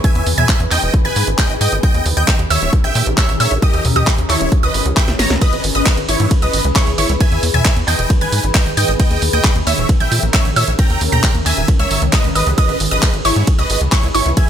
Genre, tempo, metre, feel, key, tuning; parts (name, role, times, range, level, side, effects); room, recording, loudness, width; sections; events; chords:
uplifting trance; 134 BPM; 4/4; straight; G# harmonic minor; A4 = 440 Hz
big supersaw lead; melody; 0.0-14.5 s; E4 to A#5; -21 LUFS; right 1 dB; phaser, sidechain pumping, dub echo
wide unison pluck; second line; 0.0-14.5 s; C#6 to A#6; -23 LUFS; right 2 dB; phaser, sidechain pumping, dub echo
shimmering ambient pad; sustained chords; 0.0-14.5 s; D#3 to B4; -23 LUFS; left 2 dB; chorus, built-in reverb, phaser, sidechain pumping
electronic kick drum; drums; 0.0-14.5 s; -14 LUFS; equal
house drum kit; drums; 0.0-14.5 s; handclaps, hi-hat, ride cymbal, snare drum, toms; -20 LUFS; right 1 dB; sidechain pumping on hats, sidechain pumping on toms, sidechain pumping on cymbals
tight sequencer bass; bass; 0.2-14.3 s; D#1 to A#2; -18 LUFS; equal; sidechain pumping
little or no reverb; -12 LUFS; side -9 dB against mid
0.0-14.5 A section
drum fill 5.1-5.4
0.0 Emaj7; 0.9 G#m; 1.8 D#7; 2.7 A#m7b5; 3.6 D#7; 4.5 C#m7; 5.4 G#m; 6.3 C#m7; 7.2 Emaj7; 8.1 G#m; 9.0 D#7; 9.9 A#m7b5; 10.8 D#7; 11.7 C#m7; 12.6 G#m; 13.5 C#m7